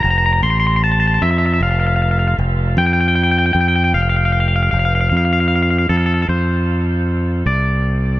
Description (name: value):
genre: post-rock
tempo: 51 BPM (dotted quarters)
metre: 6/8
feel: straight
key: F major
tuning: A4 = 440 Hz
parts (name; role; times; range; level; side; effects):
- twangy electric guitar; melody; 0.0-8.2 s; A4 to C6; -17 LUFS; left 1 dB; digital delay
- growling fingered electric bass; bass; 0.0-8.2 s; F1 to F2; -15 LUFS; equal; overdrive
room: light reverb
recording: none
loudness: -13 LUFS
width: side -15 dB against mid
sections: 0.0-6.3 A section; 6.3-8.2 B section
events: none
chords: 0.0 Fmaj7; 1.6 Fsus2; 6.3 F5